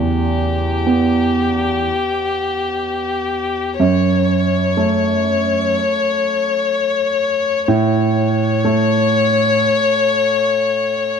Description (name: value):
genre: neoclassical piano and strings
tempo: 62 BPM (dotted quarters)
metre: 6/8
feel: rubato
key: A major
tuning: A4 = 439 Hz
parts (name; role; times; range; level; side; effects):
- rich violin; melody; 0.0-11.2 s; G4 to C#5; -17 LUFS; left 5 dB; none
- warm concert grand piano; accompaniment; 0.0-11.2 s; E2 to B3; -18 LUFS; right 3 dB; none
room: light reverb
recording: none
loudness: -14 LUFS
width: side -6 dB against mid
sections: 0.0-11.2 A section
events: none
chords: 0.0 Em; 3.8 F#m; 7.7 A